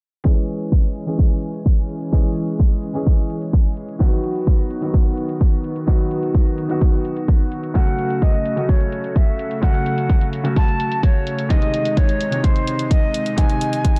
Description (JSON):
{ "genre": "EDM, festival progressive house", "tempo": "128 BPM", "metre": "4/4", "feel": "straight", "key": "C# minor", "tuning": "A4 = 440 Hz", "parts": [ { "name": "clear grand piano", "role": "accompaniment", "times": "0.2-14.0 s", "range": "B#2 to G#4", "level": "-27 LUFS", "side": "equal", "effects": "sidechain pumping, tape echo" }, { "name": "lush unison pad", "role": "sustained chords", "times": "0.3-14.0 s", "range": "B#2 to G#4", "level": "-31 LUFS", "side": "equal", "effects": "chorus, sidechain pumping" }, { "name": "electronic hi-hat", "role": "drums", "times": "0.3-14.0 s", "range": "none", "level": "-37 LUFS", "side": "equal", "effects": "none" }, { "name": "electronic kick drum", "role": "drums", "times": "0.3-13.9 s", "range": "none", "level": "-18 LUFS", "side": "equal", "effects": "none" }, { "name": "silver concert flute", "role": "melody", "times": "7.8-14.0 s", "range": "B#4 to A5", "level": "-27 LUFS", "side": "equal", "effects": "dub echo" } ], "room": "little or no reverb", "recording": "dark, warm production, low-pass filter", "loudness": "-19 LUFS", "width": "mono", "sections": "0.3-14.0 A section", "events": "filter sweep 0.3-14.0", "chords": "0.3 C#m; 4.0 B; 7.8 F#m; 11.5 G#" }